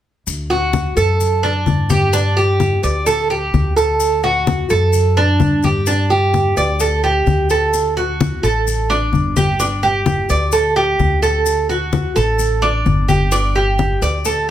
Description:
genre	latin, Cuban son and guajira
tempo	129 BPM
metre	4/4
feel	straight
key	D major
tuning	A4 = 440 Hz
part	upright bass	bass	0.3-14.5 s	G1 to G2	-19 LUFS	equal	none
part	congas	percussion	0.3-14.5 s	none	-20 LUFS	left 4 dB	none
part	maracas	percussion	0.3-14.5 s	none	-29 LUFS	left 9 dB	none
part	Cuban tres	arpeggios	0.5-14.5 s	D4 to D5	-16 LUFS	right 2 dB	none
room	moderate large studio reverb, RT60 1.2 s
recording	none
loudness	-14 LUFS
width	side -11 dB against mid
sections	0.3-14.5 A section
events	none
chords	0.3 D; 2.1 Gsus2; 4.0 D; 5.9 Gsus2; 7.7 D; 9.6 Gsus2; 11.5 D; 13.3 Gsus2

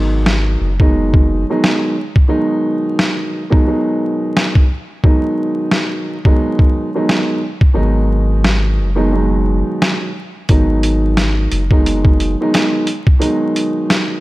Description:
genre	hip hop, boom-bap hip-hop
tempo	88 BPM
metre	4/4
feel	swing 58% on 16ths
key	G# minor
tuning	A4 = 439 Hz
part	dark grand piano	accompaniment	0.0-14.2 s	B2 to D#4	-17 LUFS	right 1 dB	high-pass filter, low-pass filter
part	soft dub sub bass	bass	0.0-1.4, 7.8-12.4 s	F#1 to G#1	-16 LUFS	equal	none
part	boom bap sampler-style drum kit	drums	0.3-14.1 s	hi-hat, kick drum, snare drum	-14 LUFS	equal	none
room	light reverb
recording	vinyl crackle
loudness	-12 LUFS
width	side -18 dB against mid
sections	0.0-14.2 A section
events	break 0.0-10.5; kick muted 7.8-10.5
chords	0.0 G#m7

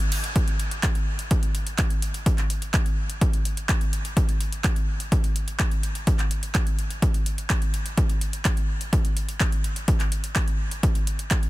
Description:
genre	EDM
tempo	126 BPM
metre	4/4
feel	straight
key	none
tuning	none
part	big-room dance drum kit	drums	0.0-11.5 s	handclaps, hi-hat, ride cymbal	-30 LUFS	equal	none
part	electronic kick drum	drums	0.4-11.4 s	none	-22 LUFS	equal	overdrive
room	little or no reverb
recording	dense, heavily limited modern master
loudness	-22 LUFS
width	side -18 dB against mid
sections	0.4-11.5 A section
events	none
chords	none

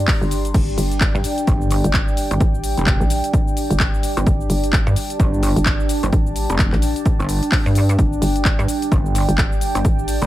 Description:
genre	bass house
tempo	129 BPM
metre	4/4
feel	swing 59% on 16ths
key	unclear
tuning	A4 = 440 Hz
part	sweeping resonant pad	sustained chords	0.0-10.3 s	G3 to C6	-26 LUFS	right 1 dB	chorus, phaser, sidechain pumping
part	hollow knocking FM bass	bass	0.0-10.2 s	G1 to G2	-21 LUFS	equal	tube saturation, sidechain pumping
part	deep dark ambient pad	texture	0.0-10.3 s	D4 to Bb5	-27 LUFS	right 1 dB	chorus, built-in reverb, sidechain pumping
part	electronic kick drum	drums	0.1-10.0 s	none	-19 LUFS	equal	small room ambience
part	house drum kit	drums	0.1-10.3 s	crash cymbal, handclaps, hi-hat, shaker	-25 LUFS	left 1 dB	small room ambience
part	pulsing pluck wobble bass	bass	1.1-10.3 s	F1 to G2	-18 LUFS	equal	chorus, tube saturation, sidechain pumping
room	little or no reverb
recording	none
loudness	-16 LUFS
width	side -15 dB against mid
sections	0.0-10.3 A section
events	none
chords	0.0 G5

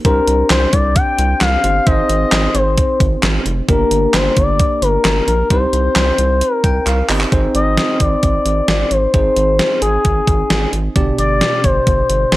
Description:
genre	synth-pop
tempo	132 BPM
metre	4/4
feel	straight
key	unclear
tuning	A4 = 441 Hz
part	expressive synth lead	melody	0.0-12.4 s	Ab4 to G5	-16 LUFS	left 2 dB	chorus
part	bell-like tine electric piano	accompaniment	0.0-12.4 s	B2 to G5	-21 LUFS	right 1 dB	lush chorus
part	round analog bass	bass	0.0-12.4 s	F1 to C2	-18 LUFS	equal	none
part	gated 80s digital drum machine	drums	0.0-12.4 s	handclaps, hi-hat, kick drum, snare drum	-16 LUFS	right 1 dB	gated reverb, gated reverb snare
room	little or no reverb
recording	dry, gritty hardware recording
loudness	-12 LUFS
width	side -17 dB against mid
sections	0.0-7.3 A section; 7.3-12.4 B section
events	tine electric piano fill 6.4-7.3; drum fill 6.9-7.3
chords	0.0 Csus2; 1.9 Ab; 3.7 Gm; 5.5 Cm; 7.3 Ab; 11.0 G

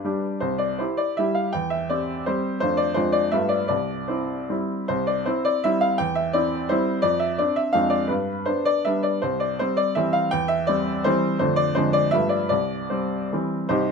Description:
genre	classical, romantic triple-time dance for piano with dotted rhythms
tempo	141-186 BPM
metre	3/4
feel	rubato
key	C major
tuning	A4 = 440 Hz
part	bright baby grand piano	solo	0.0-13.9 s	C2 to G5	-21 LUFS	equal	none
room	light reverb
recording	minimal, uncompressed stereo recording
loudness	-21 LUFS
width	side -5 dB against mid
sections	0.0-4.9 A section; 4.9-13.7 A section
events	none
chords	0.4 C; 1.5 C/E; 2.6 Dm7/F; 3.0 Dm7b5/F; 3.3 G9; 3.7 C; 6.0 C/E; 7.0 Dm7/F; 7.7 Dm7b5/F; 8.1 G; 9.2 C; 10.3 C/E; 11.4 Dm7/F; 11.8 Dm7b5/F; 12.1 G9; 12.5 C

